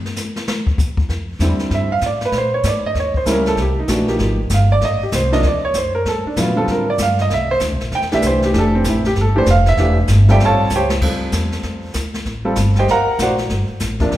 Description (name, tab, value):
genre	jazz piano trio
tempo	193 BPM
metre	4/4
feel	swing 63% on 8ths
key	F major, D minor from 11.0 s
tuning	A4 = 440 Hz
part	jazz brush drum kit	drums	0.1-14.2 s	brushed snare drum, crash cymbal, hi-hat, kick drum, snare drum	-23 LUFS	left 1 dB	none
part	upright bass	bass	1.1-14.2 s	E1 to Bb2	-18 LUFS	equal	none
part	warm grand piano	melody	1.4-14.1 s	C3 to A#5	-17 LUFS	right 1 dB	none
room	wet recital hall reverb, RT60 1.4 s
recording	recorded in a church or concert hall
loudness	-14 LUFS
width	side -13 dB against mid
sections	0.0-1.1 A section; 1.1-11.0 A section; 11.0-14.2 A section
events	drum solo 0.0-1.1; grand piano solo 1.1-14.2; drum fill 10.7-11.0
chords	0.0 N.C.; 1.1 Fmaj9; 2.3 Abadd9; 3.0 Eb7b9; 3.6 Abmaj7; 4.8 Adim; 5.4 D; 6.1 Gm11; 7.3 C7; 8.5 Fmaj9; 9.8 Fmaj13/E (rootless); 10.4 A7alt; 11.0 Dm11; 12.3 Am7; 12.9 Daug; 13.5 Gsus2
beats	0.16 0.47 0.78 | 1.09 1.40 1.71 2.02 | 2.33 2.64 2.95 3.26 | 3.57 3.88 4.20 4.51 | 4.82 5.13 5.44 5.75 | 6.06 6.37 6.68 6.99 | 7.30 7.61 7.92 8.23 | 8.54 8.85 9.16 9.47 | 9.78 10.09 10.40 10.71 | 11.02 11.33 11.64 11.95 | 12.26 12.57 12.88 13.19 | 13.50 13.81 14.12